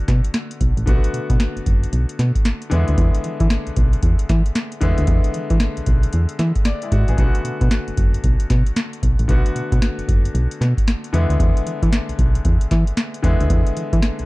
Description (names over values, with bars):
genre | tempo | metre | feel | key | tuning
R&B, new jack swing | 114 BPM | 4/4 | swing 63% on 16ths | B dorian | A4 = 440 Hz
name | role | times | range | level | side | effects
bright baby grand piano | accompaniment | 0.0-14.3 s | C#3 to D5 | -26 LUFS | left 3 dB | none
solid FM bass | bass | 0.1-14.2 s | F#1 to E3 | -18 LUFS | equal | none
booming analog drum machine | drums | 0.1-14.3 s | hi-hat, kick drum, snare drum | -18 LUFS | equal | none
room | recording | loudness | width
digital ambience | dark, warm production | -16 LUFS | side -21 dB against mid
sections
0.0-14.3 A section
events
grand piano fill 6.4-7.2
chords
0.0 Bm7; 2.7 E7; 7.2 Bm7; 11.1 E7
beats
0.34 | 0.87 1.40 1.92 2.45 | 2.98 3.50 4.03 4.55 | 5.08 5.61 6.13 6.66 | 7.19 7.71 8.24 8.76 | 9.29 9.82 10.34 10.87 | 11.40 11.92 12.45 12.97 | 13.50 14.03